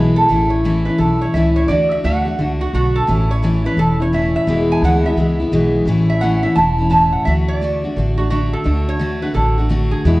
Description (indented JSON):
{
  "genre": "honky-tonk and classic country",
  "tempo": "172 BPM",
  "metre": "4/4",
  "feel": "swing 64% on 8ths",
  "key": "A major",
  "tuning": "A4 = 440 Hz",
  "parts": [
    { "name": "lap resonator guitar", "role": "second line", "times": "0.0-10.2 s", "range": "F#4 to A5", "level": "-20 LUFS", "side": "right 2 dB", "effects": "none" },
    { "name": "picked steel-string acoustic guitar", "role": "accompaniment", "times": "0.0-10.2 s", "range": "E2 to F#4", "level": "-17 LUFS", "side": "left 1 dB", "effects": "none" },
    { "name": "upright bass", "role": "bass", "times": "0.0-10.2 s", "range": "E1 to E2", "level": "-18 LUFS", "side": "equal", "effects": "none" }
  ],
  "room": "moderate recital hall reverb, RT60 1.5 s",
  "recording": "worn, warbling old tape, cassette tape, warbly pitch drift",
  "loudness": "-14 LUFS",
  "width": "side -19 dB against mid",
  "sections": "0.3-10.2 A section",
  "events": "resonator guitar played with a steel bar solo 0.3-10.2",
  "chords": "0.3 A; 1.7 D; 3.1 A; 4.5 E; 5.9 A; 7.3 D"
}